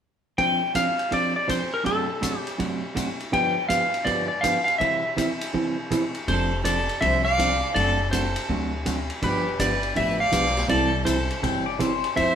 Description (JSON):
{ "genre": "country, western swing", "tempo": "163 BPM", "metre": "4/4", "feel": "swing 64% on 8ths", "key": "F major", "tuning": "A4 = 439 Hz", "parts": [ { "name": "clean lap steel guitar", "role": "melody", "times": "0.4-12.3 s", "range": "A4 to G5", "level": "-23 LUFS", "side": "equal", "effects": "none" }, { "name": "hollow-body jazz guitar", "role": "accompaniment", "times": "0.4-12.3 s", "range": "F#2 to A4", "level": "-27 LUFS", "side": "right 2 dB", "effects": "none" }, { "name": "vintage drum kit", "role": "drums", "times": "0.4-12.3 s", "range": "hi-hat, kick drum, ride cymbal, snare drum", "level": "-31 LUFS", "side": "left 1 dB", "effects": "none" }, { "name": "clear fiddle", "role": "second line", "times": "6.3-12.3 s", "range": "G4 to D5", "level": "-29 LUFS", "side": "right 1 dB", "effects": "none" }, { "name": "upright bass", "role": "bass", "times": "6.3-12.3 s", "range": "F1 to F2", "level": "-28 LUFS", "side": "left 1 dB", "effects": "none" }, { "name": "pedal steel guitar", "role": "second line", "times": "11.4-12.1 s", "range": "C5 to G5", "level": "-28 LUFS", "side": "left 10 dB", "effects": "none" } ], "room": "wet stone room reverb, RT60 1.0 s", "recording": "band playing live in one room", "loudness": "-21 LUFS", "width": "side -8 dB against mid", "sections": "0.4-6.3 A section; 6.3-12.3 B section", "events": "none", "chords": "0.4 F6; 1.9 D7/F#; 3.3 G7; 4.8 C6; 6.3 F6; 7.8 D7/F#; 9.2 G7; 10.7 C6", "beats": "| 0.38 0.75 1.12 1.49 | 1.86 2.23 2.60 2.96 | 3.33 3.70 4.07 4.44 | 4.81 5.17 5.54 5.91 | 6.28 6.65 7.02 7.38 | 7.75 8.12 8.49 8.86 | 9.22 9.59 9.96 10.33 | 10.70 11.06 11.43 11.80 | 12.17" }